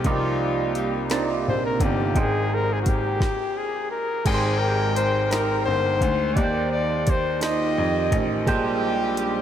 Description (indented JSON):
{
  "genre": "slow six-eight R&B",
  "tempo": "57 BPM (dotted quarters)",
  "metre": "6/8",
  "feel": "straight",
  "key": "unclear",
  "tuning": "A4 = 440 Hz",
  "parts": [
    { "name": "clear flugelhorn", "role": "melody", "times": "0.0-8.2 s", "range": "F#4 to Eb5", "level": "-26 LUFS", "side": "left 2 dB", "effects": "ping-pong delay" },
    { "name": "barky tine electric piano", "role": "accompaniment", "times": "0.0-9.4 s", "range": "Bb2 to G5", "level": "-26 LUFS", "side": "right 4 dB", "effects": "overdrive, phaser" },
    { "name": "warm horn section", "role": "stabs", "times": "0.0-1.0, 4.3-9.4 s", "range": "F3 to G5", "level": "-33 LUFS", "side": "left 3 dB", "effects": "none" },
    { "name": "smooth R&B drum kit", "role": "drums", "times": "0.0-9.3 s", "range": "crash cymbal, hi-hat, kick drum, snare drum", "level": "-27 LUFS", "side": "equal", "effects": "none" },
    { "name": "clear grand piano", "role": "bass", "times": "0.1-9.4 s", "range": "G1 to F2", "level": "-27 LUFS", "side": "left 2 dB", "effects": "none" }
  ],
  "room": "wet huge ambient reverb, RT60 8.8 s",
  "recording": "dreamy mix soaked in reverb",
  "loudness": "-20 LUFS",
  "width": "side -10 dB against mid",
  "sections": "0.0-4.3 A section; 4.3-9.4 B section",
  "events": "flugelhorn solo 0.0-4.3; stop 3.2-4.3",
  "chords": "0.0 Cm11; 2.2 Abmaj7; 6.4 Eb6; 8.5 Bb13",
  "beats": "| 0.05 1.10 | 2.15 3.21 | 4.26 5.31 | 6.37 7.42 | 8.47"
}